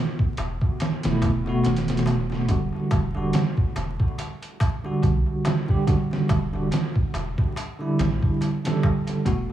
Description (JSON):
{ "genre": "trip hop", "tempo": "71 BPM", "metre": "4/4", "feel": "swing 56% on 16ths", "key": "E minor", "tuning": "A4 = 441 Hz", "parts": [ { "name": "trip hop sampler-style drum kit", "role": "drums", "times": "0.2-9.5 s", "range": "hi-hat, kick drum, snare drum", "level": "-24 LUFS", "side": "right 1 dB", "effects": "tape echo" }, { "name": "darbuka", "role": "percussion", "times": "0.2-9.5 s", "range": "none", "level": "-37 LUFS", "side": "left 1 dB", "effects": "tape echo" }, { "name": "soft dub sub bass", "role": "bass", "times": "0.4-9.5 s", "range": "D1 to B1", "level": "-29 LUFS", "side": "equal", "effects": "none" }, { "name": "bell-like tine electric piano", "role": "accompaniment", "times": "1.0-9.5 s", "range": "B2 to A4", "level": "-24 LUFS", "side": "right 1 dB", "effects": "tremolo, vintage 12-bit sampler grit, tape echo" } ], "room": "light reverb", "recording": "echo-heavy mix, vinyl crackle, small room reverb", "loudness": "-21 LUFS", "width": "side -12 dB against mid", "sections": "0.0-9.5 A section", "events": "none", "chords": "0.0 Gmaj9/E (rootless); 2.5 Em9" }